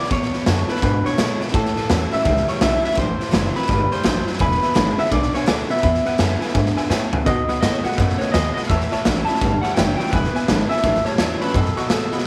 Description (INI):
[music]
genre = rockabilly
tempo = 168 BPM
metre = 4/4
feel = swing 62% on 8ths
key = E mixolydian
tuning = A4 = 440 Hz
[part]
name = electric guitar through a small old amp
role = melody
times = 0.0-12.3 s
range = A4 to A5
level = -26 LUFS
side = equal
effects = tape echo
[part]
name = picked steel-string acoustic guitar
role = accompaniment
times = 0.0-12.3 s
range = E2 to F#4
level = -30 LUFS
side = equal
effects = none
[part]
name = electric guitar through a small old amp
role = riff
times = 0.0-12.2 s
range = E2 to A3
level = -29 LUFS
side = equal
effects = none
[part]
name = raw garage drum kit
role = drums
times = 0.0-12.2 s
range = hi-hat, kick drum, snare drum, toms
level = -24 LUFS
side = equal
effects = none
[part]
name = upright bass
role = bass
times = 0.1-12.1 s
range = E1 to B2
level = -25 LUFS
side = equal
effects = none
[part]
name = tack piano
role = accompaniment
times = 4.4-12.3 s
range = B4 to C#6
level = -31 LUFS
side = equal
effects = none
[sound]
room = light reverb, small room ambience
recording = none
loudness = -19 LUFS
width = mono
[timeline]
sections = 0.0-12.3 A section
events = honky-tonk piano fill 6.7-7.3; drum fill 6.9-7.3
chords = 0.0 E7; 1.5 A7; 3.0 Am7; 4.4 E7; 7.3 B7; 8.7 A7; 10.1 E7; 10.8 A7; 11.5 B7